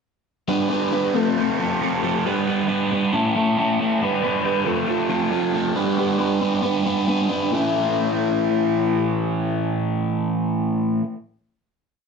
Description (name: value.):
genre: rock.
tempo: 137 BPM.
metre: 4/4.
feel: straight.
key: A mixolydian.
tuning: A4 = 444 Hz.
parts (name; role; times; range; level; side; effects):
overdriven semi-hollow guitar; solo; 0.5-11.0 s; A2 to B4; -19 LUFS; equal; phaser, slapback echo.
room: light reverb.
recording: dry, close 1970s-style studio recording.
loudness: -19 LUFS.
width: side -5 dB against mid.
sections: 0.5-7.5 pre-chorus; 7.5-11.0 final chord.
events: none.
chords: 0.5 G; 1.2 F; 2.3 G; 3.1 A; 4.0 G; 4.7 F; 5.8 G; 7.5 A.